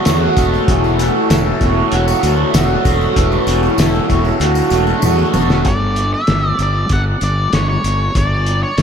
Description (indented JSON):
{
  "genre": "psychedelic rock",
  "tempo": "96 BPM",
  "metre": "4/4",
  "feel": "straight",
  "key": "unclear",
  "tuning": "A4 = 441 Hz",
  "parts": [
    { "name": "pedal harmonium", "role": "sustained chords", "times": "0.0-5.6 s", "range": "F#4 to A5", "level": "-21 LUFS", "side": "right 3 dB", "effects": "none" },
    { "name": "fuzz guitar", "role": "riff", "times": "0.0-5.7 s", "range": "E3 to C#5", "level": "-17 LUFS", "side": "equal", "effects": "distortion, phaser" },
    { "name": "fuzz fingered electric bass", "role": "bass", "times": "0.1-8.8 s", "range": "E1 to E2", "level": "-17 LUFS", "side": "equal", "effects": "overdrive" },
    { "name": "cloth-damped thuddy drum kit", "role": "drums", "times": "0.1-8.8 s", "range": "hi-hat, kick drum, snare drum, toms", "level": "-18 LUFS", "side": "equal", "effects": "none" },
    { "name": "tambourine", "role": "percussion", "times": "0.1-5.6 s", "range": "none", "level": "-33 LUFS", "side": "left 9 dB", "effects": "none" },
    { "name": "octave-fuzz lead guitar", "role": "melody", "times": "5.7-8.8 s", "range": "C#5 to F#5", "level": "-18 LUFS", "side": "equal", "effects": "distortion, tape echo" }
  ],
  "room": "moderate lush hall reverb, RT60 2.5 s",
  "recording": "dreamy mix soaked in reverb",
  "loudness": "-12 LUFS",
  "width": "side -7 dB against mid",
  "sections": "0.0-5.7 A section; 5.7-8.8 B section",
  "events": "drum fill 5.0-5.7",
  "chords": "0.0 F#m/E; 5.7 G5",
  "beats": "0.05 | 0.68 1.30 1.92 2.54 | 3.16 3.79 4.41 5.03 | 5.66 6.28 6.90 7.53 | 8.15 8.78"
}